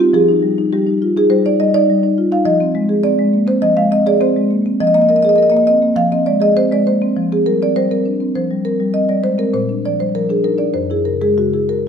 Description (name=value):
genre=classical, contemporary piece for solo marimba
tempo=102 BPM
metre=4/4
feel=rubato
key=unclear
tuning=A4 = 439 Hz
part: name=marimba with medium mallets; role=solo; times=0.0-11.9 s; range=Gb2 to F5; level=-12 LUFS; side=equal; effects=none
room=wet stone room reverb, RT60 1.3 s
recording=none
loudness=-13 LUFS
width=side -7 dB against mid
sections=0.0-11.9 A section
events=none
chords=0.1 Fm9; 2.5 Bbsus2/F; 7.2 C5/F; 9.5 Bb6; 10.7 Gbsus2